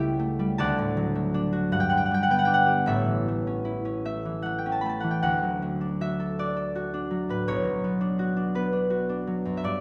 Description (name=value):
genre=classical, solo harp piece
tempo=50-56 BPM (dotted quarters)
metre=6/8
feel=rubato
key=D major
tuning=A4 = 439 Hz
part: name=concert harp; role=solo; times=0.0-9.8 s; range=A1 to B5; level=-26 LUFS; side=equal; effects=none
room=wet recital hall reverb, RT60 1.4 s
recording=recorded in a church or concert hall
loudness=-26 LUFS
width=mono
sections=0.0-5.2 A section; 5.2-9.8 B section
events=none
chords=0.0 A7/C#; 0.6 D; 1.7 G; 2.9 A; 5.2 D; 7.5 Bm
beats=| 0.58 1.72 | 2.87 4.06 | 5.24 6.38 | 7.48 8.54 | 9.63